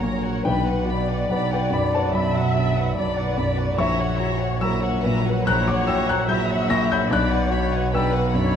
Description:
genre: classical, romantic movement for piano and orchestra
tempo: 72 BPM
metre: 4/4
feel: rubato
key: B minor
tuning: A4 = 440 Hz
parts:
  - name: warm chamber violin section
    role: melody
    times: 0.0-8.5 s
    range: F#5 to B5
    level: -32 LUFS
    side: left 3 dB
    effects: none
  - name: warm concert grand piano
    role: melody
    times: 0.0-8.6 s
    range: A#1 to A#6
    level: -22 LUFS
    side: left 1 dB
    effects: none
  - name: rich studio violin section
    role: second line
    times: 0.0-8.6 s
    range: D4 to E5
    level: -30 LUFS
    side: left 2 dB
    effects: none
  - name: dark symphonic viola section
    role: accompaniment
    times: 0.0-8.6 s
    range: A#4 to E5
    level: -27 LUFS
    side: equal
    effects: none
  - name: warm studio cello section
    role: bass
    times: 0.0-8.6 s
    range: A#2 to B2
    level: -29 LUFS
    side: right 4 dB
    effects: none
  - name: warm symphonic double bass section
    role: bass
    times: 0.0-8.6 s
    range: A#1 to B1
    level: -30 LUFS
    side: right 4 dB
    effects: none
  - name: timpani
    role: percussion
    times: 0.5-1.7 s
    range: B2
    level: -33 LUFS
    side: equal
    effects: none
room: moderate scoring stage reverb, RT60 1.6 s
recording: dark, warm production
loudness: -19 LUFS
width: side -8 dB against mid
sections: 0.0-8.6 A section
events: none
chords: 0.5 Bm; 3.8 F#7/A#; 7.1 Bm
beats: | 0.46 1.30 2.15 2.98 | 3.79 4.61 5.46 6.28 | 7.10 7.93

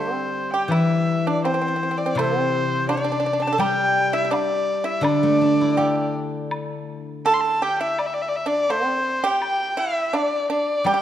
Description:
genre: chinese traditional, Chinese chamber ensemble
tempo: 83 BPM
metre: 2/4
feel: rubato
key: G zhi mode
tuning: A4 = 440 Hz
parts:
  - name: rich erhu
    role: melody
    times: 0.0-11.0 s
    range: C5 to C6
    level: -22 LUFS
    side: left 2 dB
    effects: none
  - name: pipa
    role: second line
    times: 0.0-11.0 s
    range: C4 to A4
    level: -25 LUFS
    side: right 3 dB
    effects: none
  - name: steel-string zither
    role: accompaniment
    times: 0.0-7.3, 10.8-11.0 s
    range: C3 to A4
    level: -23 LUFS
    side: left 1 dB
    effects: none
  - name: woodblock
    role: percussion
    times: 0.7-11.0 s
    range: none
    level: -33 LUFS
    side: left 2 dB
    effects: none
room: moderate scoring stage reverb, RT60 1.9 s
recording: dark, warm production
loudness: -19 LUFS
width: side -11 dB against mid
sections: 0.7-11.0 A section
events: none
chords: none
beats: | 0.72 1.45 | 2.18 2.89 | 3.61 4.32 | 5.04 5.78 | 6.52 7.26 | 7.99 8.70 | 9.42 10.14 | 10.86

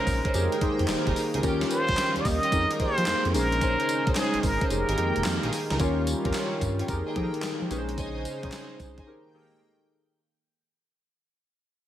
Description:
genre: R&B, new jack swing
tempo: 110 BPM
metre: 4/4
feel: swing 66% on 16ths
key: unclear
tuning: A4 = 440 Hz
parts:
  - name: trumpet with plunger mute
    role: melody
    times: 0.0-5.5 s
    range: Ab4 to Eb5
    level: -27 LUFS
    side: equal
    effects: none
  - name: warm analog keys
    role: accompaniment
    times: 0.0-10.2 s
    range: Db4 to C5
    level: -31 LUFS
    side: left 1 dB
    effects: chorus
  - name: chorused pulse-width pad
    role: sustained chords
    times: 0.0-10.1 s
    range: Db3 to G5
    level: -34 LUFS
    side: right 1 dB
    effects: none
  - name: smooth synth bass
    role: bass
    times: 0.1-9.0 s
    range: F1 to F3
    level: -30 LUFS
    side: equal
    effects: none
  - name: gated 80s digital drum machine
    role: drums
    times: 0.1-9.1 s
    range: handclaps, hi-hat, kick drum, snare drum, tambourine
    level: -30 LUFS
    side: equal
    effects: gated reverb, gated reverb snare
  - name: warm studio string section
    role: stabs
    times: 0.2-9.1 s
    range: Db4 to Ab5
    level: -34 LUFS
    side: right 1 dB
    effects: none
  - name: group handclap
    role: percussion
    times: 0.9-8.7 s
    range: none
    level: barely audible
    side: none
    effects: none
room: light reverb, digital ambience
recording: none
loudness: -24 LUFS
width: side -12 dB against mid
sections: 0.0-5.8 A section; 5.8-10.2 B section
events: kick muted 4.7-5.8; fade-out 5.8-10.2; break 9.1-10.2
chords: 0.3 Fm11; 1.4 Eb9; 2.5 Fm11; 3.3 Bbm11; 4.7 Fm11; 5.8 Eb9; 6.9 Fm11; 7.7 Bbm11; 9.1 Ebadd11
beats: 0.34 0.89 | 1.43 1.98 2.52 3.07 | 3.61 4.16 4.71 5.25 | 5.79 6.34 6.89 7.43 | 7.98 8.52 9.07 9.61

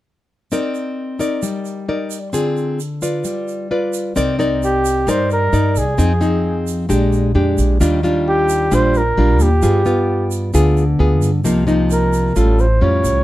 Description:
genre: bossa nova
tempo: 132 BPM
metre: 4/4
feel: straight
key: C minor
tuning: A4 = 440 Hz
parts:
  - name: nylon-string guitar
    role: accompaniment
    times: 0.5-13.2 s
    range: A2 to D5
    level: -17 LUFS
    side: left 1 dB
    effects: none
  - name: egg shaker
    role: percussion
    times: 0.5-13.2 s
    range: none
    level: -32 LUFS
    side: right 9 dB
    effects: none
  - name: upright bass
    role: bass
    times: 4.2-13.2 s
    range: A1 to G2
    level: -17 LUFS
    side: equal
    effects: none
  - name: mellow flugelhorn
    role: melody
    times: 4.6-13.2 s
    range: G4 to C#5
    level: -18 LUFS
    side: equal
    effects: none
room: little or no reverb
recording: dark, warm production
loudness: -14 LUFS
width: side -15 dB against mid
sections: 0.5-4.2 A section; 4.2-13.2 B section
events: none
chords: 0.5 Cm9; 2.3 Dm7b5; 3.3 G7; 4.2 Cm9; 6.0 Fm7; 6.9 Bb6; 7.8 Ebmaj9; 9.6 G7b9; 11.4 Cm7; 12.4 A7alt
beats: | 0.52 0.97 1.43 1.89 | 2.34 2.80 3.25 3.71 | 4.16 4.62 5.08 5.53 | 5.99 6.44 6.90 7.35 | 7.81 8.26 8.72 9.17 | 9.63 10.08 10.54 10.99 | 11.45 11.90 12.36 12.81

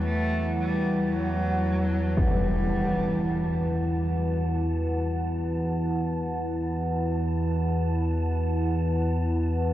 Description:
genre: dark ambient drone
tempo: free time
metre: none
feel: none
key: E minor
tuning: A4 = 440 Hz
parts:
  - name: warm cello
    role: melody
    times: 0.0-3.7 s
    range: F#3 to A3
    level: -31 LUFS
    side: equal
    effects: ping-pong delay
  - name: dark analog pad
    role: sustained chords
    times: 0.0-9.7 s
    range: E4 to F#5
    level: -30 LUFS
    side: equal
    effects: chorus, phaser
  - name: analog drone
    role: drone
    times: 0.0-9.7 s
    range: E2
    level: -27 LUFS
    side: equal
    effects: wide subtle chorus
  - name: wind-like tuned noise texture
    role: texture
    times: 0.0-9.7 s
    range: A5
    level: -43 LUFS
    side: right 4 dB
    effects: built-in reverb
  - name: impact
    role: percussion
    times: 2.2-2.4 s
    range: none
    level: -30 LUFS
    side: equal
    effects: low-pass filter on sfx
room: wet cathedral reverb, RT60 6.5 s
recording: worn, warbling old tape, cassette tape, warbly pitch drift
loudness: -24 LUFS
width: side -13 dB against mid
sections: 0.0-9.7 A section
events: fade-in on synth texture 0.0-9.7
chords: 0.0 Esus2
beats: free time

